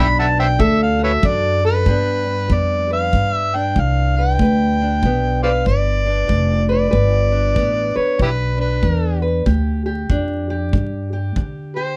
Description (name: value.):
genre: acoustic country blues, solo or duo.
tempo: 95 BPM.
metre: 4/4.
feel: swing 62% on 8ths.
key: G mixolydian.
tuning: A4 = 441 Hz.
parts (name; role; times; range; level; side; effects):
overdriven harmonica; melody; 0.0-12.0 s; E4 to B5; -22 LUFS; equal; none.
fingerpicked steel-string acoustic guitar; accompaniment; 0.0-12.0 s; G2 to B4; -25 LUFS; equal; none.
upright bass; bass; 0.0-12.0 s; F1 to D3; -21 LUFS; equal; none.
kick drum; drums; 0.6-11.5 s; none; -24 LUFS; equal; none.
room: light reverb.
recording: vinyl crackle.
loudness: -18 LUFS.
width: mono.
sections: 0.0-1.9 A section; 1.9-12.0 B section.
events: harmonica solo 0.0-1.9.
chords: 0.0 G; 0.6 D; 1.9 G.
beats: 0.60 1.23 | 1.86 2.49 3.12 3.76 | 4.39 5.03 5.66 6.29 | 6.93 7.56 8.20 8.83 | 9.47 10.10 10.74 11.37.